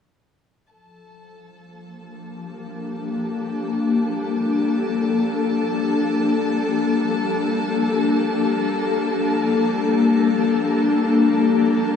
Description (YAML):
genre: ambient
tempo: free time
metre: none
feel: none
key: G minor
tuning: A4 = 439 Hz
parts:
  - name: ethereal airy pad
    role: sustained chords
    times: 2.3-12.0 s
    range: F3 to A4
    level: -19 LUFS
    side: left 3 dB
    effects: ensemble chorus, built-in reverb
  - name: organ-like drone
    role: drone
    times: 2.6-12.0 s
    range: G3 to D4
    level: -33 LUFS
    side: left 1 dB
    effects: ensemble chorus, built-in reverb
  - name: dark studio violin section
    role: texture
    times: 0.7-12.0 s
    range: A4 to A5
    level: -30 LUFS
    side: left 2 dB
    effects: none
room: wet cathedral reverb, RT60 5.8 s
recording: in a vast, echoing space, small room ambience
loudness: -18 LUFS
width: side -7 dB against mid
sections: 0.7-12.0 A section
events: fade-in on synth drone 0.7-12.0; fade-in on violin section 0.7-12.0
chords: 0.7 Gm9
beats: free time